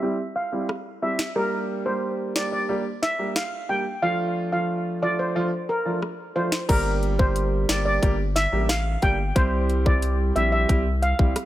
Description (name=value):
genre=dancehall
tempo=90 BPM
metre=4/4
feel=straight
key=G dorian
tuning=A4 = 440 Hz
part: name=warm grand piano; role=accompaniment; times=0.0-11.3 s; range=F3 to G4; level=-27 LUFS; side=right 2 dB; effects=low-pass filter
part: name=steel pan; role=melody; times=0.4-11.1 s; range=Bb4 to G5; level=-26 LUFS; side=equal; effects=low-pass filter, ping-pong delay
part: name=island pop drum kit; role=drums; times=0.7-11.5 s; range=crash cymbal, hi-hat, kick drum, rim click, snare drum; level=-24 LUFS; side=equal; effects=overdrive
part: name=saturated sub bass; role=bass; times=6.7-11.3 s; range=G1 to C2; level=-24 LUFS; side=left 1 dB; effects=none
room=digital ambience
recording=none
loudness=-21 LUFS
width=side -14 dB against mid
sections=0.0-6.7 A section; 6.7-11.5 B section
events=filter sweep 0.0-6.7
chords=0.0 C; 1.4 Gm; 4.0 Dm; 6.7 Gm; 9.4 C